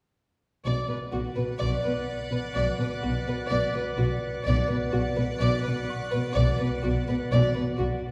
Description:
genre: cinematic.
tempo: 63 BPM.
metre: 4/4.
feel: straight.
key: B minor.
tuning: A4 = 437 Hz.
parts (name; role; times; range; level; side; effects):
rich chamber violin section; melody; 0.6-7.9 s; F#4 to D5; -33 LUFS; equal; none.
icy glass pad; sustained chords; 1.3-8.1 s; B4 to F#5; -37 LUFS; equal; chorus, built-in reverb.
dark chamber cello section; bass; 0.7-7.9 s; B2; -32 LUFS; equal; none.
rich studio double bass section; bass; 0.7-7.9 s; B1; -32 LUFS; equal; none.
concert harp; texture; 1.6-8.1 s; D5 to F#6; -43 LUFS; equal; none.
room: wet concert hall reverb, RT60 2.0 s.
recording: heard from further back in the room.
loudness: -27 LUFS.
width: mono.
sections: 0.7-8.1 A section.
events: none.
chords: 0.7 Bm.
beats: | 0.66 1.61 2.56 3.52 | 4.47 5.42 6.37 7.33.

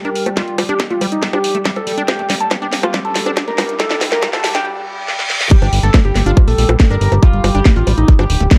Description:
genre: psychedelic trance.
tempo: 140 BPM.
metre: 4/4.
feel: straight.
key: G minor.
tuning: A4 = 440 Hz.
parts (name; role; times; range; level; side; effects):
overdriven synth lead; melody; 0.0-8.4 s; Eb4 to Bb4; -23 LUFS; equal; distortion, chorus, phaser, sidechain pumping, digital delay.
overtone-sweeping drone; sustained chords; 0.0-8.6 s; G3 to G4; -28 LUFS; equal; chorus, built-in reverb, sidechain pumping.
liquid acid bass; riff; 0.0-8.6 s; G3 to D4; -27 LUFS; equal; chorus, sidechain pumping, tape echo.
garage drum kit; drums; 0.0-8.6 s; bongos, crash cymbal, hi-hat, snare drum; -21 LUFS; equal; high-pass filter on hats, high-pass filter on snare, high-pass filter on perc, high-pass filter on cymbals, high-pass filter on room.
riser and reverse cymbal; sound effects; 1.8-5.5 s; none; -28 LUFS; equal; none.
deep dark ambient pad; texture; 0.0-4.7 s; none; barely audible; none; none.
electronic kick drum; drums; 0.4-8.6 s; none; -12 LUFS; equal; high-pass filter on kick, high-pass filter on room.
fat analog bass; bass; 5.6-8.5 s; D1 to Bb1; -16 LUFS; equal; none.
room: light reverb.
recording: dark, warm production, high-pass filter.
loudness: -15 LUFS.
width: mono.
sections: 0.0-5.5 A section; 5.5-8.6 B section.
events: build-up 0.0-5.5; drum fill 0.0-4.7, 5.1-5.5; filter sweep on acid bass 0.0-5.5; filter sweep on analog synth lead 0.0-5.5; filter sweep 0.0-5.5; reverse cymbal 4.7-5.5; drop 5.5-8.6.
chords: 0.0 G5.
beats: | 0.37 0.80 1.23 1.66 | 2.08 2.51 2.94 3.37 | 3.80 4.23 4.66 5.08 | 5.51 5.94 6.37 6.80 | 7.23 7.66 8.08 8.51.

